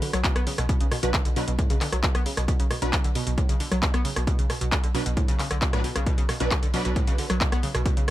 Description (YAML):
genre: driving peak-time techno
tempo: 134 BPM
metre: 4/4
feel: straight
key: B minor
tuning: A4 = 438 Hz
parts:
  - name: analog pluck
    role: riff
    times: 0.0-8.1 s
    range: A2 to B3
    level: -30 LUFS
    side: equal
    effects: chorus, tube saturation, vintage 12-bit sampler grit, sidechain pumping, tape echo
  - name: rave stab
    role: stabs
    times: 0.0-8.1 s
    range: F#3 to B4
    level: -33 LUFS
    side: right 1 dB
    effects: chorus, built-in reverb, sidechain pumping, tape echo
  - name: techno drum kit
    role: drums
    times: 0.0-8.1 s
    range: handclaps, hi-hat, rim click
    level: -29 LUFS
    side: equal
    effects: sidechain pumping on hats, sidechain pumping on cymbals
  - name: impact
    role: sound effects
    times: 0.0-0.7 s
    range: none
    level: barely audible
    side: none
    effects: none
  - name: saturated sub bass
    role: bass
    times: 0.1-8.1 s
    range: B1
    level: -29 LUFS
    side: equal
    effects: overdrive, sidechain pumping, low-pass filter
  - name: electronic kick drum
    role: drums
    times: 0.2-7.9 s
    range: none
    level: -25 LUFS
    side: equal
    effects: none
room: little or no reverb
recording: none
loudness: -22 LUFS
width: side -14 dB against mid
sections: 0.0-8.1 A section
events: impact 0.0-0.7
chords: 0.0 Bm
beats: 0.24 | 0.69 1.14 1.59 2.04 | 2.48 2.93 3.38 3.83 | 4.27 4.72 5.17 5.62 | 6.07 6.51 6.96 7.41 | 7.86